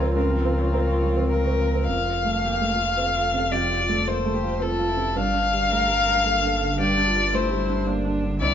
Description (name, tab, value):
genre	neoclassical piano and strings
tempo	110 BPM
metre	3/4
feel	rubato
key	F major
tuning	A4 = 440 Hz
part	dark violin	melody	0.0-8.5 s	F4 to F5	-23 LUFS	left 3 dB	none
part	dark viola	accompaniment	0.0-8.5 s	C4 to Bb4	-32 LUFS	right 2 dB	none
part	felt-muted upright piano	accompaniment	0.0-8.5 s	C2 to Db5	-27 LUFS	right 3 dB	none
part	concert harp	arpeggios	0.0-4.2 s	Bb3 to Bb5	-29 LUFS	left 1 dB	none
part	sub bass with octave	bass	0.0-8.5 s	F1 to Db2	-27 LUFS	equal	none
room	wet large studio reverb, RT60 1.2 s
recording	band playing live in one room, nothing above 7.5 kHz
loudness	-20 LUFS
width	side -9 dB against mid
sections	0.0-1.9 A section; 1.9-8.5 B section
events	none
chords	0.0 Bbmadd9/Db; 1.9 F; 5.2 Gm7